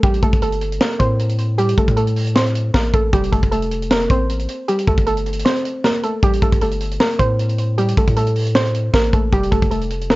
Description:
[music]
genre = hip hop, trap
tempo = 155 BPM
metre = 4/4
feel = half-time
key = unclear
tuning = A4 = 440 Hz
[part]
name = soft round pluck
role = melody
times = 0.0-10.2 s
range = G3 to C5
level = -20 LUFS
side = right 1 dB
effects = chorus
[part]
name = long sustained 808-style bass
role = bass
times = 0.0-10.2 s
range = F1 to A2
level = -20 LUFS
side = equal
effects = none
[part]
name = tight funk drum kit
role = drums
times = 0.0-10.2 s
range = hi-hat, kick drum, snare drum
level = -18 LUFS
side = equal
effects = vintage 12-bit sampler grit
[sound]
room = light reverb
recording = worn, warbling old tape, cassette tape, warbly pitch drift, nothing above 7.7 kHz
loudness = -15 LUFS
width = side -19 dB against mid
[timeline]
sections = 0.0-10.2 A section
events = kick muted 5.5-6.2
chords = 0.0 Gsus24; 3.1 Fadd9; 4.7 Gm; 6.2 Am; 9.3 Fadd9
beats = | 0.03 0.42 0.81 1.20 | 1.58 1.97 2.36 2.74 | 3.13 3.52 3.90 4.29 | 4.68 5.07 5.45 5.84 | 6.23 6.62 7.00 7.39 | 7.78 8.16 8.55 8.94 | 9.32 9.71 10.10

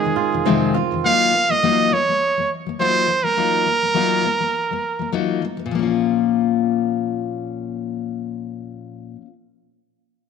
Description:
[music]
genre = acoustic pop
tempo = 103 BPM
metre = 4/4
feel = swing 55% on 16ths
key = Bb minor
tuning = A4 = 440 Hz
[part]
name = brilliant trumpet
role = melody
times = 0.0-5.1 s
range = Ab4 to F5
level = -18 LUFS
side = right 3 dB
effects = none
[part]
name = picked steel-string acoustic guitar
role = accompaniment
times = 0.0-9.3 s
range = F2 to F4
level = -21 LUFS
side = left 9 dB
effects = none
[part]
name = flamenco guitar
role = arpeggios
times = 0.0-1.6 s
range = Eb3 to F4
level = -22 LUFS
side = right 13 dB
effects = none
[sound]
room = moderate echo chamber reverb, RT60 2.1 s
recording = 1960s-style stereo with parts hard left and right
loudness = -17 LUFS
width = side -6 dB against mid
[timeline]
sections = 0.0-5.7 A section; 5.7-8.1 B section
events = none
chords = 0.0 Fm7; 1.0 Ebmadd9; 5.7 Bbm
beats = 0.46 | 1.04 1.62 2.21 2.79 | 3.38 3.96 4.55 5.13 | 5.71 6.30 6.88 7.47

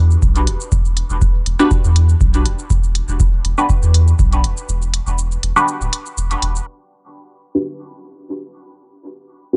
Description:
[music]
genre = dub techno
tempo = 121 BPM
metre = 4/4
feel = swing 53% on 16ths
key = E minor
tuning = A4 = 440 Hz
[part]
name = filtered dub chord stab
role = stabs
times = 0.0-9.6 s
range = D4 to B4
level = -22 LUFS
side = equal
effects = phaser, sidechain pumping, dub echo
[part]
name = soft dub sub bass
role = bass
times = 0.0-6.6 s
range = D1 to E2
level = -18 LUFS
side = equal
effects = sidechain pumping
[part]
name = electronic shaker and hi-hat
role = drums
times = 0.1-6.6 s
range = none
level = -27 LUFS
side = equal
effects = low-pass filter on hats, low-pass filter on perc
[part]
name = electronic kick drum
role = drums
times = 0.2-4.3 s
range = none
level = -18 LUFS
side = equal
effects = none
[sound]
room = digital ambience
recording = dry, gritty hardware recording, cassette tape, low-pass filter, nothing above 10.8 kHz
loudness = -16 LUFS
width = mono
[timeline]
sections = 0.0-6.7 A section; 6.7-9.6 B section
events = break 4.7-6.7; filter sweep on synth stab 6.7-9.6; filter sweep 6.7-9.6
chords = 0.0 Em7; 6.7 Gmaj7/D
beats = 0.23 | 0.72 1.22 1.71 2.21 | 2.70 3.20 3.70 4.19 | 4.69 5.18 5.68 6.17 | 6.67 7.17 7.66 8.16 | 8.65 9.15

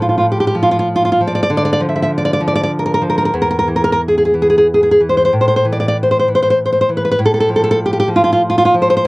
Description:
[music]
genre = romantic piece for solo classical guitar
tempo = 86-103 BPM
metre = 3/4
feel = rubato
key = unclear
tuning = A4 = 440 Hz
[part]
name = nylon-string guitar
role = solo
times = 0.0-9.1 s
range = E2 to E5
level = -11 LUFS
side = equal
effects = none
[sound]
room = moderate booth ambience, RT60 0.2 s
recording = worn, warbling old tape, cassette tape, warbly pitch drift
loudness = -11 LUFS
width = side -22 dB against mid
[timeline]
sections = 0.0-9.1 A section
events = none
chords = 0.0 F/A; 1.5 Dm; 3.3 N.C.; 5.3 A5; 7.2 F/A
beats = 0.25 0.88 | 1.51 2.10 2.70 | 3.34 4.00 4.66 | 5.34 5.97 6.58 | 7.19 7.79 8.41 | 9.06

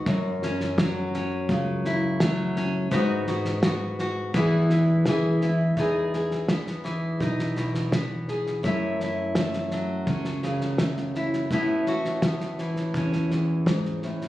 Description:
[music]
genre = acoustic folk duo or small band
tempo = 84 BPM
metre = 4/4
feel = straight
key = E major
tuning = A4 = 440 Hz
[part]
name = nylon-string guitar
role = accompaniment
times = 0.0-14.3 s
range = E2 to G#4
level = -24 LUFS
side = left 1 dB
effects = none
[part]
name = upright bass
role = bass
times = 0.0-14.3 s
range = A1 to G#2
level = -31 LUFS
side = right 1 dB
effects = none
[part]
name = cloth-damped thuddy drum kit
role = drums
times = 0.1-14.3 s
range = kick drum, snare drum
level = -28 LUFS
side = equal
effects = none
[sound]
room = light reverb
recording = recorded on a phone in the room, studio reverb, compression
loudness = -23 LUFS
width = side -15 dB against mid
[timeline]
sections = 0.0-5.8 A section; 5.8-14.3 B section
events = none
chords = 0.1 F#m7; 2.9 G#m7; 4.3 E; 5.8 Emaj7; 8.6 F#m7; 11.5 Aadd9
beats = | 0.07 0.78 1.49 2.20 | 2.92 3.63 4.34 5.06 | 5.77 6.49 7.21 7.92 | 8.64 9.36 10.07 10.79 | 11.51 12.23 12.95 13.66

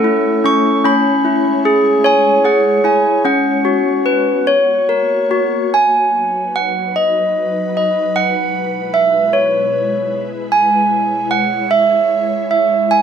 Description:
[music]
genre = children's music, lullaby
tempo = 50 BPM (dotted quarters)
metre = 6/8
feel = rubato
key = B major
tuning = A4 = 441 Hz
[part]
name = handbells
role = melody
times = 0.0-13.0 s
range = C#4 to C#6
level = -13 LUFS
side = right 1 dB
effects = none
[part]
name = ethereal airy pad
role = sustained chords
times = 0.0-13.0 s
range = B2 to C#5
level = -22 LUFS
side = left 1 dB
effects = ensemble chorus, built-in reverb
[sound]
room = light reverb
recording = none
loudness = -12 LUFS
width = side -8 dB against mid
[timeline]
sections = 0.0-5.7 A section; 5.7-13.0 B section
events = none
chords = 0.0 A; 0.8 C#m; 3.2 F#sus4; 4.5 F#; 5.7 B; 8.2 E/B; 10.5 C#m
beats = | 0.85 2.05 | 3.24 4.47 | 5.73 6.96 | 8.17 9.35 | 10.52 11.71 | 12.91

